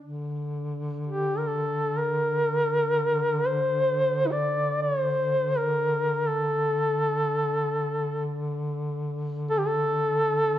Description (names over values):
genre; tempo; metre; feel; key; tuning
caucasian folk, Caucasian lament; free time; none; none; unclear; A4 = 440 Hz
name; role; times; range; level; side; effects
mellow duduk; drone; 0.0-10.6 s; D3; -30 LUFS; equal; none
mellow duduk; melody; 1.1-10.6 s; Eb4 to D5; -24 LUFS; equal; none
room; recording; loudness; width
moderate recital hall reverb, RT60 1.3 s; dark, warm production; -24 LUFS; side -12 dB against mid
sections
0.0-10.6 A section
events
none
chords
none